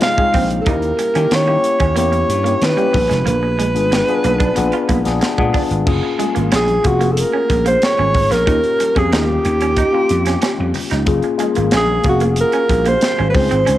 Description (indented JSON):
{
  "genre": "polished 1980s jazz-funk pop",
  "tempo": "92 BPM",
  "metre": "4/4",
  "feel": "straight",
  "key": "unclear",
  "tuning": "A4 = 440 Hz",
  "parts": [
    { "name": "warm alto saxophone", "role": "melody", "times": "0.0-13.8 s", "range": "Gb4 to F5", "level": "-17 LUFS", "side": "right 1 dB", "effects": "cassette tape" },
    { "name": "tine electric piano", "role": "accompaniment", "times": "0.0-13.8 s", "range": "C3 to F5", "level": "-20 LUFS", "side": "left 6 dB", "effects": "lush chorus, cassette tape" },
    { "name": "electric guitar at the edge of break-up", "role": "riff", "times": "0.0-13.8 s", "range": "G3 to F4", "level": "-25 LUFS", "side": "right 7 dB", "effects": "lush chorus, cassette tape" },
    { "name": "crisp fusion drum kit", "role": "drums", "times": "0.0-13.8 s", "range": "crash cymbal, hi-hat, kick drum, snare drum", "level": "-20 LUFS", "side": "equal", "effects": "cassette tape" },
    { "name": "congas", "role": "percussion", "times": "0.0-13.8 s", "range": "none", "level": "-33 LUFS", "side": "left 7 dB", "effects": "none" },
    { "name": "vintage slap bass", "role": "bass", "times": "0.3-13.8 s", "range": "F1 to Eb3", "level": "-19 LUFS", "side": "equal", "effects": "none" }
  ],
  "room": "moderate spring reverb, RT60 2.5 s",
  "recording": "home recording on cassette",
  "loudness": "-13 LUFS",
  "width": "side -13 dB against mid",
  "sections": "0.0-5.9 A section; 5.9-13.8 B section",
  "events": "none",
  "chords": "0.0 Dbmaj9 (rootless); 0.7 Eb7b9; 2.9 Bb7b9; 5.9 Gbmaj9 (rootless); 8.5 Eb9; 11.1 Gbmaj9"
}